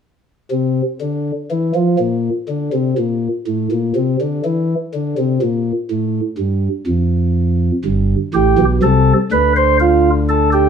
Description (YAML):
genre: classical, baroque-style 3-part fugue for pipe organ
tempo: 61 BPM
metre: 4/4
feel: straight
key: unclear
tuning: A4 = 439 Hz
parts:
  - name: chamber organ, flutes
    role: solo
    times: 0.5-10.7 s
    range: G1 to C5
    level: -14 LUFS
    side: equal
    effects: none
room: wet stone room reverb, RT60 0.9 s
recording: none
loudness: -14 LUFS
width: side -7 dB against mid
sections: 0.0-10.7 A section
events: none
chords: 0.0 N.C.; 7.9 C5/G; 9.8 Dm